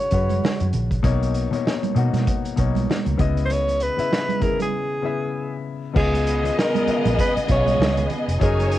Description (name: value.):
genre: lush 1970s-style soul.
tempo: 98 BPM.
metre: 4/4.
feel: swing 58% on 16ths.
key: unclear.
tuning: A4 = 441 Hz.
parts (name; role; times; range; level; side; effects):
breathy alto saxophone; melody; 0.0-8.8 s; G#4 to C#5; -23 LUFS; equal; cassette tape.
warm baby grand piano; accompaniment; 0.0-8.8 s; B2 to E#5; -26 LUFS; left 7 dB; cassette tape.
vintage muted fingered electric bass; bass; 0.1-8.8 s; E#1 to B2; -22 LUFS; equal; none.
vintage drum kit; drums; 0.1-8.8 s; crash cymbal, hi-hat, kick drum, snare drum; -25 LUFS; equal; none.
congas; percussion; 0.3-8.7 s; none; -28 LUFS; right 10 dB; none.
warm studio string section; second line; 6.0-8.8 s; B3 to G#5; -25 LUFS; left 1 dB; cassette tape, analog delay.
room: light reverb.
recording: home recording on cassette.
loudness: -19 LUFS.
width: side -14 dB against mid.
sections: 0.0-6.0 A section; 6.0-8.8 B section.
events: break 4.7-6.0.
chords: 0.0 C#7sus4; 1.0 Bmaj9; 3.2 C#m9; 6.0 C#9.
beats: 0.43 | 1.04 1.66 2.27 2.89 | 3.50 4.12 4.73 5.34 | 5.96 6.57 7.19 7.80 | 8.41.